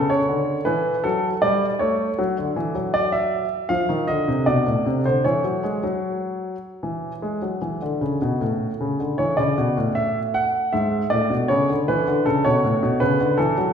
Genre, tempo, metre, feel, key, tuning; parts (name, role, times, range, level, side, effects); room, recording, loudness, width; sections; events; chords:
classical-period piano sonatina; 78 BPM; 4/4; rubato; A major; A4 = 445 Hz
clear grand piano; solo; 0.0-13.7 s; G#2 to F#5; -19 LUFS; equal
wet recital hall reverb, RT60 1.7 s; heard from further back in the room; -19 LUFS; side -7 dB against mid
0.0-13.7 A section
0.0 A7; 2.2 D; 3.7 F7(no3); 5.2 Esus2 (rootless); 6.8 N.C.; 8.4 A